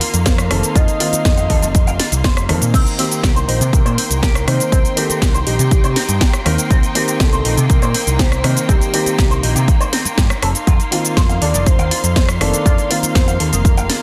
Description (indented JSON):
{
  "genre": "nu-disco, nu disco",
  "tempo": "121 BPM",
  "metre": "4/4",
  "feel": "straight",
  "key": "C dorian",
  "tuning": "A4 = 439 Hz",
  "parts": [
    { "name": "soft octave-layered synth lead", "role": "melody", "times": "0.0-14.0 s", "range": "G4 to Eb5", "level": "-26 LUFS", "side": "equal", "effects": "chorus, tremolo" },
    { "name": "dark concert grand piano", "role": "accompaniment", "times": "0.0-14.0 s", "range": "Eb3 to Bb4", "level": "-26 LUFS", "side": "equal", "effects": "sidechain pumping" },
    { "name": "rich studio violin section", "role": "sustained chords", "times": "0.0-14.0 s", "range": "Bb3 to C6", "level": "-28 LUFS", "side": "equal", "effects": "vintage 12-bit sampler grit, sidechain pumping" },
    { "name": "electric guitar with an envelope filter", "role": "riff", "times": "0.0-14.0 s", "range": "C3 to F5", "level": "-28 LUFS", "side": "equal", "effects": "lush chorus" },
    { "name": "house drum kit", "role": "drums", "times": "0.0-14.0 s", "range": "crash cymbal, hi-hat, rim click, shaker, snare drum", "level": "-22 LUFS", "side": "equal", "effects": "none" },
    { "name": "overdriven picked electric bass", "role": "bass", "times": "0.1-13.9 s", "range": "F1 to C3", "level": "-21 LUFS", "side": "equal", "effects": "sidechain pumping" },
    { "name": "electronic kick drum", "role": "drums", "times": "0.3-13.7 s", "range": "none", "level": "-17 LUFS", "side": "equal", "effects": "none" }
  ],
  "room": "light reverb",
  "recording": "dense, heavily limited modern master",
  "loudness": "-15 LUFS",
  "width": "mono",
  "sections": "0.0-14.0 A section",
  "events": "none",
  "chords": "0.0 F7sus4; 2.7 Cm7; 10.4 F7sus4"
}